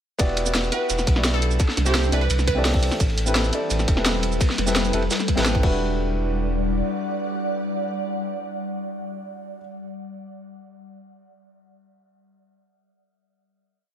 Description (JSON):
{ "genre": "liquid drum and bass", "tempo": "171 BPM", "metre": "4/4", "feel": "straight", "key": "E minor", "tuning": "A4 = 438 Hz", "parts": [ { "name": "warm baby grand piano", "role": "accompaniment", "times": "0.2-9.6 s", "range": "B3 to F#5", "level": "-28 LUFS", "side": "left 1 dB", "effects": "ping-pong delay" }, { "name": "ethereal airy pad", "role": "sustained chords", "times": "1.3-9.4 s", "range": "E3 to F#5", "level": "-28 LUFS", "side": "equal", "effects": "ensemble chorus, built-in reverb, sidechain pumping" }, { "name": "warm sub bass", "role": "bass", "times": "0.2-6.8 s", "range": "E1 to C2", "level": "-24 LUFS", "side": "equal", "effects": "none" }, { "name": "crunchy breakbeat drum kit", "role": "drums", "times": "0.2-5.6 s", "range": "hi-hat, ride cymbal, snare drum", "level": "-30 LUFS", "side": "equal", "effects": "high-pass filter on cymbals, high-pass filter on hats, high-pass filter on snare, high-pass filter on room" }, { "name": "drum and bass drum kit", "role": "drums", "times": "0.2-5.7 s", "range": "crash cymbal, hi-hat, shaker, snare drum", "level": "-25 LUFS", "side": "equal", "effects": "none" }, { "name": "electronic kick drum", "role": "drums", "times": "0.2-5.7 s", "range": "none", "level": "-21 LUFS", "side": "equal", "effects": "none" }, { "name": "glassy wavetable pluck", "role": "melody", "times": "0.7-3.0 s", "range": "G4 to B4", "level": "-29 LUFS", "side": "right 3 dB", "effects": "chorus, ping-pong delay" } ], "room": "light reverb, studio reverb", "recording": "none", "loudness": "-20 LUFS", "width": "side -10 dB against mid", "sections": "0.2-5.8 drop; 5.8-8.6 final hit", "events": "drop 0.2-5.8", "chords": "0.2 Em9; 1.6 C69; 3.0 Am9; 4.4 Fmaj9#11; 5.6 Em9" }